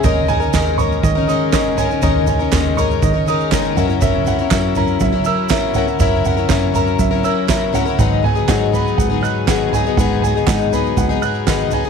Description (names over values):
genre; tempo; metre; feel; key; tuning
indie folk with a building arrangement; 121 BPM; 4/4; straight; G# minor; A4 = 440 Hz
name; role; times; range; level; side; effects
picked plugged-in twelve-string acoustic guitar; accompaniment; 0.0-11.9 s; G#2 to A#4; -18 LUFS; left 14 dB; none
warm upright piano; arpeggios; 0.0-11.9 s; D#5 to F#6; -22 LUFS; right 13 dB; none
fingered electric bass; bass; 0.0-11.9 s; D#2 to F#3; -21 LUFS; right 1 dB; none
soft-mallet drum kit; drums; 0.0-11.8 s; kick drum, snare drum, toms; -19 LUFS; right 3 dB; none
tube shaker; percussion; 0.0-11.9 s; none; -34 LUFS; right 14 dB; none
group handclap; percussion; 0.5-11.6 s; none; -24 LUFS; right 12 dB; none
room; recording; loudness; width
light reverb, small room ambience; 1960s-style stereo with parts hard left and right; -14 LUFS; side -6 dB against mid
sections
0.0-11.9 A section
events
none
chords
0.0 D#7sus4; 3.8 F#7; 8.0 G#m7